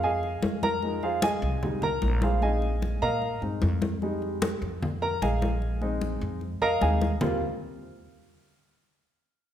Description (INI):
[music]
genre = Afro-Cuban jazz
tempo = 150 BPM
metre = 4/4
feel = straight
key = Eb major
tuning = A4 = 438 Hz
[part]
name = warm baby grand piano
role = accompaniment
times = 0.0-7.4 s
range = F3 to Bb5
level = -28 LUFS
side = equal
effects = none
[part]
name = upright bass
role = bass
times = 0.0-7.4 s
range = Bb1 to Bb2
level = -29 LUFS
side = equal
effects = none
[part]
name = congas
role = percussion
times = 0.0-7.3 s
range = none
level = -31 LUFS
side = left 2 dB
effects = none
[sound]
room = moderate recital hall reverb, RT60 1.5 s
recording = recorded in a church or concert hall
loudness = -25 LUFS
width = side -10 dB against mid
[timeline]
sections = 0.0-7.2 A section; 7.2-8.8 B section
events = grand piano solo 0.0-7.2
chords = 0.0 Bb7sus4; 4.0 Fm7; 5.6 Bb7sus4; 7.2 Eb69